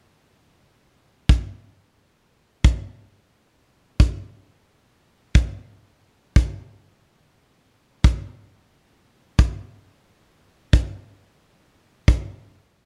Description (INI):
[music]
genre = pop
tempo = 89 BPM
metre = 4/4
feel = straight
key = none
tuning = none
[part]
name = kick drum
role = drums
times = 1.3-12.2 s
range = none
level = -20 LUFS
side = equal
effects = none
[sound]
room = little or no reverb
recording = none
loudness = -22 LUFS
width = mono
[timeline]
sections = 1.3-12.9 A section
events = none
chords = none